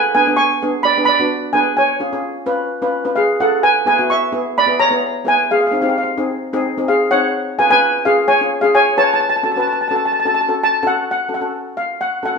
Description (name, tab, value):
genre	calypso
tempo	129 BPM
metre	4/4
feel	straight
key	F# harmonic minor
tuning	A4 = 440 Hz
part	steel pan	melody	0.0-12.4 s	G#4 to C#6	-14 LUFS	equal	none
part	steel pan	accompaniment	0.1-12.4 s	B3 to B4	-21 LUFS	left 1 dB	none
room	wet stone room reverb, RT60 0.9 s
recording	band playing live in one room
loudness	-14 LUFS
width	side -5 dB against mid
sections	0.0-11.1 A section; 11.1-12.4 B section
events	none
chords	0.0 G#dim; 1.8 C#; 3.6 E; 5.5 G#; 7.4 C#; 9.2 F#m